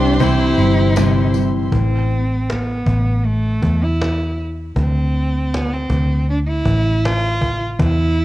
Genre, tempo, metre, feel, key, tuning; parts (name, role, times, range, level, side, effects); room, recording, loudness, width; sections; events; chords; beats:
pop ballad; 79 BPM; 4/4; straight; A4 = 435 Hz
warm cello; melody; 0.0-8.2 s; A3 to F4; -21 LUFS; right 2 dB
felt-muted upright piano; accompaniment; 0.0-1.7 s; C3 to G3; -21 LUFS; right 8 dB; cassette tape
warm studio string section; sustained chords; 0.0-1.7 s; G4 to C6; -25 LUFS; equal; cassette tape
fingerpicked steel-string acoustic guitar; arpeggios; 0.0-2.2 s; C3 to C5; -20 LUFS; left 8 dB; cassette tape, tape echo
vintage muted fingered electric bass; bass; 0.0-8.2 s; G1 to E2; -17 LUFS; equal
cajon; drums; 0.0-8.2 s; -24 LUFS; equal; cassette tape
tambourine; percussion; 0.2-1.5 s; -38 LUFS; left 10 dB
small room ambience; home recording on cassette; -15 LUFS; side -15 dB against mid
0.0-1.7 A section; 1.7-8.2 B section
0.0 C; 1.7 Am; 4.8 D5
0.20 0.96 | 1.72 2.48 3.24 4.00 | 4.76 5.52 6.28 7.04 | 7.80